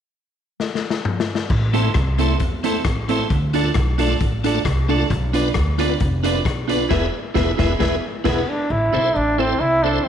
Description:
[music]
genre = ska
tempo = 133 BPM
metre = 4/4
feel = straight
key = A harmonic minor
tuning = A4 = 441 Hz
[part]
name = raw garage drum kit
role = drums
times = 0.6-8.4 s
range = crash cymbal, hi-hat, kick drum, rim click, snare drum, toms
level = -23 LUFS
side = left 3 dB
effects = none
[part]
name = upright bass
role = bass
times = 1.5-10.0 s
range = E1 to E2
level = -22 LUFS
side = equal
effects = none
[part]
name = clean electric guitar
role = accompaniment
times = 1.7-10.0 s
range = C4 to E5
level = -23 LUFS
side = right 10 dB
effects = slapback echo
[part]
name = tonewheel organ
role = stabs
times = 1.7-10.0 s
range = A3 to C5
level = -25 LUFS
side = left 8 dB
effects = overdrive, chorus vibrato, fast rotary speaker, slapback echo
[part]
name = clear trombone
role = melody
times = 8.3-10.1 s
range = B3 to E4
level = -18 LUFS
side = right 1 dB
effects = none
[sound]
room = moderate echo chamber reverb, RT60 1.6 s, studio reverb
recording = 1960s-style stereo with parts hard left and right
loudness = -17 LUFS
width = side -9 dB against mid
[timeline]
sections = 0.0-1.5 A section; 1.5-8.7 B section; 8.7-10.1 C section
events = drum fill 0.6-1.5; band accent 6.9-8.7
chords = 0.0 N.C.; 1.5 Am; 3.3 Dm; 5.1 Bdim; 6.9 E; 8.7 Am

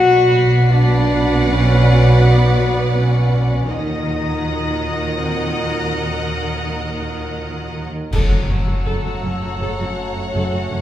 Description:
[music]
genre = cinematic, suspense film score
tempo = 81 BPM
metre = 3/4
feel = straight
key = unclear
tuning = A4 = 437 Hz
[part]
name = warm symphonic violin section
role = melody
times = 0.0-10.8 s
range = F#5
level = -29 LUFS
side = left 1 dB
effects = none
[part]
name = dark clarinet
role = second line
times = 0.0-7.8 s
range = A#4 to F#5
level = -29 LUFS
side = left 1 dB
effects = none
[part]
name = warm symphonic violin section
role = second line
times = 0.0-10.8 s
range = C#5 to D#5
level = -28 LUFS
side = left 1 dB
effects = none
[part]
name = rich symphonic viola section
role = accompaniment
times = 0.0-10.8 s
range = C#4 to B4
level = -29 LUFS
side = right 1 dB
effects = none
[part]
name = dark trombone section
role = sustained chords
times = 0.0-10.8 s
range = F#2 to A3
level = -26 LUFS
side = right 2 dB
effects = none
[part]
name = warm French horn section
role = sustained chords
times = 0.0-10.8 s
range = A#3 to F#4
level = -21 LUFS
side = left 2 dB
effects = none
[part]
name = warm symphonic cello section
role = riff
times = 0.0-10.8 s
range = F#2 to D#3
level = -29 LUFS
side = right 1 dB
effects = none
[part]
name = warm chamber cello section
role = bass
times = 0.0-10.8 s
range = F#2 to D#3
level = -21 LUFS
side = right 1 dB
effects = none
[part]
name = warm symphonic double bass section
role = bass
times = 0.0-10.8 s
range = F#1 to D#2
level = -21 LUFS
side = right 1 dB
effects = none
[part]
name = warm symphonic violin section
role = texture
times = 0.0-10.8 s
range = A5 to B#6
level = -30 LUFS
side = left 3 dB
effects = none
[part]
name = clash cymbals and concert bass drum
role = percussion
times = 8.1-9.6 s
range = none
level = -24 LUFS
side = equal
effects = none
[part]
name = impact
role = sound effects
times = 8.1-10.3 s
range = none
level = -25 LUFS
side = left 1 dB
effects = none
[sound]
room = wet recital hall reverb, RT60 1.4 s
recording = heard from further back in the room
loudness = -15 LUFS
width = side -12 dB against mid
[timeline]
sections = 0.0-8.1 A section; 8.1-10.8 A section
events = band accent 8.1-8.9; impact 8.1-10.3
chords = 0.0 Bm; 3.7 D#m; 8.1 F#m

